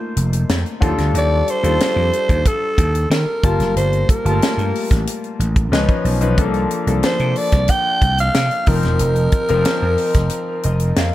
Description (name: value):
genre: polished 1980s jazz-funk pop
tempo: 92 BPM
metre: 4/4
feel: straight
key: unclear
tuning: A4 = 436 Hz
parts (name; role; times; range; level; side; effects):
- growling alto saxophone; melody; 0.0-11.1 s; F4 to G5; -20 LUFS; right 1 dB; none
- clear grand piano; accompaniment; 0.0-11.1 s; E#3 to A5; -22 LUFS; left 4 dB; analog chorus
- vintage slap bass; bass; 0.2-11.1 s; E1 to Eb3; -18 LUFS; equal; none
- tight funk drum kit; drums; 0.2-11.1 s; hi-hat, kick drum, snare drum; -19 LUFS; equal; none
room: light reverb, small room ambience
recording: none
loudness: -15 LUFS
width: side -14 dB against mid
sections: 0.0-11.1 A section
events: grand piano fill 10.3-11.1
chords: 0.0 F7sus4; 0.8 Ebmaj9#11; 3.4 Gm9; 5.7 C#9; 6.4 C13sus4; 8.7 F7sus4